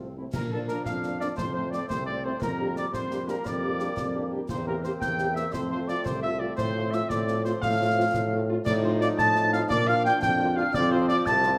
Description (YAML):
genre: military-style march for wind band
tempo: 115 BPM (dotted quarters)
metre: 6/8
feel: straight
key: F major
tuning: A4 = 440 Hz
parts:
  - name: mellow cornet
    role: melody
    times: 0.0-11.6 s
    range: F4 to A5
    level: -32 LUFS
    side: equal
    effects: none
  - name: dark woodwind section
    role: second line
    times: 0.0-11.6 s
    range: C4 to A5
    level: -37 LUFS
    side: equal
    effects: none
  - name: mellow French horn section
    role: accompaniment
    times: 0.0-11.5 s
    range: F3 to G4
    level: -37 LUFS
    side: equal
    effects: none
  - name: clear trombone section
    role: sustained chords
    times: 0.0-11.6 s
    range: F3 to Eb4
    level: -38 LUFS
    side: equal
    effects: none
  - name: warm tuba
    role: bass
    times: 0.0-11.6 s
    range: C2 to Bb2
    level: -32 LUFS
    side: equal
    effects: none
  - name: concert snare drum, clash cymbals and concert bass drum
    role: drums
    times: 0.3-11.6 s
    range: none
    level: -39 LUFS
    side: equal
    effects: none
  - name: mellow hollow piccolo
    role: second line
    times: 0.4-11.6 s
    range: A5 to A6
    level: -33 LUFS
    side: equal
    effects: none
room: wet large studio reverb, RT60 1.3 s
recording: none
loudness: -26 LUFS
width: mono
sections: 0.3-11.6 A section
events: none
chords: 0.3 Bb; 1.4 F; 2.4 Gm7/F; 4.5 C7/E; 5.5 F; 6.6 F/A; 8.7 F7/A; 9.7 Bb; 10.7 F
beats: | 0.34 0.86 | 1.38 1.90 | 2.42 2.94 | 3.46 3.98 | 4.50 5.02 | 5.54 6.06 | 6.58 7.10 | 7.62 8.14 | 8.66 9.18 | 9.70 10.22 | 10.74 11.26